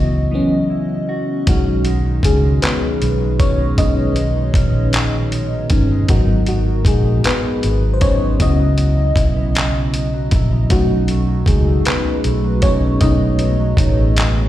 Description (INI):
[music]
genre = slow six-eight R&B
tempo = 52 BPM (dotted quarters)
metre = 6/8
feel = straight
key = unclear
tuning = A4 = 440 Hz
[part]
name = mellow electric guitar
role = second line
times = 0.0-14.5 s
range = G#2 to F#4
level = -25 LUFS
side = right 4 dB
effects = slapback echo, plate reverb
[part]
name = FM electric piano with soft pad layer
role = accompaniment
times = 0.0-14.5 s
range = E3 to D#5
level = -19 LUFS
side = left 2 dB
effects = chorus, tremolo, plate reverb, slapback echo
[part]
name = vintage muted fingered electric bass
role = bass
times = 0.0-14.5 s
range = G1 to C#2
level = -17 LUFS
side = equal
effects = none
[part]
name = dusty soul sampler-style drum kit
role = drums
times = 1.5-14.4 s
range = handclaps, hi-hat, kick drum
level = -17 LUFS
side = equal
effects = overdrive
[sound]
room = light reverb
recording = live gig heard through the venue's PA, recital hall reverb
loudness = -14 LUFS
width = side -13 dB against mid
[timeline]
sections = 0.0-1.5 A section; 1.5-14.5 B section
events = break 0.3-1.5; FM electric piano solo 1.5-14.5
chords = 0.0 C#m11; 1.5 B69; 6.1 G#m7; 8.4 C#m11; 10.7 B7